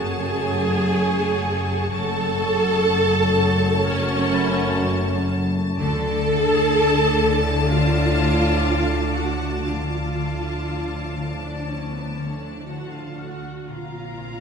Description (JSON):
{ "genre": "cinematic, suspense film score", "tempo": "61 BPM", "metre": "4/4", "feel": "straight", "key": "unclear", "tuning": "A4 = 441 Hz", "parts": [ { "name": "rich symphonic violin section", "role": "melody", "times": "0.0-14.4 s", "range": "A5 to A#5", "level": "-32 LUFS", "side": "left 4 dB", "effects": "none" }, { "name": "rich symphonic violin section", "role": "second line", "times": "0.0-14.4 s", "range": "B4 to A5", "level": "-29 LUFS", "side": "equal", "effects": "none" }, { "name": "warm symphonic viola section", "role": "accompaniment", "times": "0.0-14.4 s", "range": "B3 to A4", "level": "-24 LUFS", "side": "right 1 dB", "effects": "none" }, { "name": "dark French horn section", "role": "sustained chords", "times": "0.0-14.4 s", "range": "B#2 to D4", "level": "-31 LUFS", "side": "left 2 dB", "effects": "none" }, { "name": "warm trombone section", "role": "sustained chords", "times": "0.0-14.4 s", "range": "F#2 to F#3", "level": "-32 LUFS", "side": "right 2 dB", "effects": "none" }, { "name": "concert harp", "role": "riff", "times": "0.0-14.4 s", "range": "F#2 to D4", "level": "-29 LUFS", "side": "left 4 dB", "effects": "none" }, { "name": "rich symphonic cello section", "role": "bass", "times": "0.0-14.4 s", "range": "F#2 to D3", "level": "-28 LUFS", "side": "right 1 dB", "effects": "none" }, { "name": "warm symphonic double bass section", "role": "bass", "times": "0.0-14.4 s", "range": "F#1 to D2", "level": "-27 LUFS", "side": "right 2 dB", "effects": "none" }, { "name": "celesta", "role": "texture", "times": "0.0-14.4 s", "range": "F#5 to A6", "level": "-35 LUFS", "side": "left 6 dB", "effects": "none" }, { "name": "warm symphonic violin section", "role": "texture", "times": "0.0-13.1 s", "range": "F#5 to D6", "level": "-35 LUFS", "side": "left 3 dB", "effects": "none" } ], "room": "wet recital hall reverb, RT60 1.6 s", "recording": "recorded in a church or concert hall", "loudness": "-19 LUFS", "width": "side -6 dB against mid", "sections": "0.0-14.4 A section", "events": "none", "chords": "0.0 F#madd9; 5.8 Dm; 13.7 A#sus2", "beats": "0.93 | 1.90 2.88 3.85 4.82 | 5.78 6.74 7.71 8.68 | 9.66 10.66 11.67 12.67 | 13.68" }